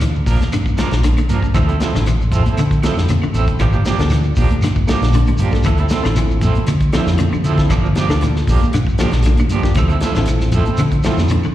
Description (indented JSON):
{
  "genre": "afrobeat",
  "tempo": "117 BPM",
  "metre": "4/4",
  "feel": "swing 53% on 16ths",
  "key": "G dorian",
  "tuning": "A4 = 440 Hz",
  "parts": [
    { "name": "clean electric guitar", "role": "arpeggios", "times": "0.0-11.5 s", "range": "D3 to F3", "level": "-23 LUFS", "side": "left 5 dB", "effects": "ensemble chorus, slapback echo" },
    { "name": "vintage muted fingered electric bass", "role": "bass", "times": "0.0-11.4 s", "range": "G1 to D3", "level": "-16 LUFS", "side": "equal", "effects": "none" },
    { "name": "warm soul drum kit", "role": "drums", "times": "0.0-11.4 s", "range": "hi-hat, kick drum, snare drum", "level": "-21 LUFS", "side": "equal", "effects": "none" },
    { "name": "claves", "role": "percussion", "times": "0.0-11.5 s", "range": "none", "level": "-38 LUFS", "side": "right 4 dB", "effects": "none" },
    { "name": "congas", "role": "percussion", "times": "0.0-11.3 s", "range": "none", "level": "-26 LUFS", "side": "equal", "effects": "slapback echo" },
    { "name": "shekere", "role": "percussion", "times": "0.0-11.5 s", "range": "none", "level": "-26 LUFS", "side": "equal", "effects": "none" },
    { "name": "electric guitar at the edge of break-up", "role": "stabs", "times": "0.3-11.2 s", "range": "F3 to Bb4", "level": "-23 LUFS", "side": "right 6 dB", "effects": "tremolo, slapback echo" },
    { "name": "barky reed electric piano", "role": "accompaniment", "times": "4.0-11.4 s", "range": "Bb3 to A4", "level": "-24 LUFS", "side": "left 1 dB", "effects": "overdrive, slapback echo" }
  ],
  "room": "small room ambience",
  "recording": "live gig heard through the venue's PA, recital hall reverb",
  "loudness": "-13 LUFS",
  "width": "side -13 dB against mid",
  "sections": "0.0-11.5 A section",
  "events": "drum fill 11.0-11.5",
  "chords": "0.0 Gm7; 1.6 Dm9; 3.6 Gm7; 5.7 Dm9; 7.7 Gm7; 9.8 Dm9"
}